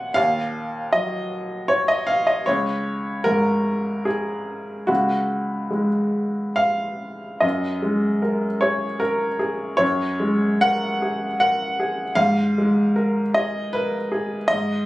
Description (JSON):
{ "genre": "neoclassical minimalist piano", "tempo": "67-80 BPM", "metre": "3/4", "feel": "rubato", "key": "unclear", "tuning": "A4 = 439 Hz", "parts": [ { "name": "clear upright piano", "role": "solo", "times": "0.0-14.9 s", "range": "C#2 to G#5", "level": "-20 LUFS", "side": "equal", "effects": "none" } ], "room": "light reverb", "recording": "recorded on a phone in the room, studio reverb", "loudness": "-19 LUFS", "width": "side -18 dB against mid", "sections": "0.0-7.4 A section; 7.4-14.9 B section", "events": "none", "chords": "0.0 D#m7; 2.5 C#sus4; 7.4 F#add9; 12.2 G#madd9" }